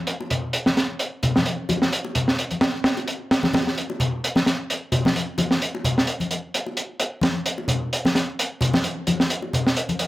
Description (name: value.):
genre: breakbeat.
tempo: 130 BPM.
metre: 4/4.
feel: swing 55% on 16ths.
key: none.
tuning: none.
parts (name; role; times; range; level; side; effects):
crunchy breakbeat drum kit; drums; 0.1-10.1 s; hi-hat, snare drum; -22 LUFS; equal; low-pass filter on hats, low-pass filter on snare, low-pass filter on room.
bongos and congas; percussion; 0.2-10.0 s; none; -25 LUFS; left 2 dB; none.
room: light reverb, small room ambience.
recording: none.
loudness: -20 LUFS.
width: side -17 dB against mid.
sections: 0.0-10.1 A section.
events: none.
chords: none.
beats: | 0.07 0.54 1.00 1.46 | 1.92 2.38 2.84 3.31 | 3.77 4.23 4.69 5.15 | 5.61 6.08 6.54 7.00 | 7.46 7.92 8.38 8.84 | 9.31 9.77.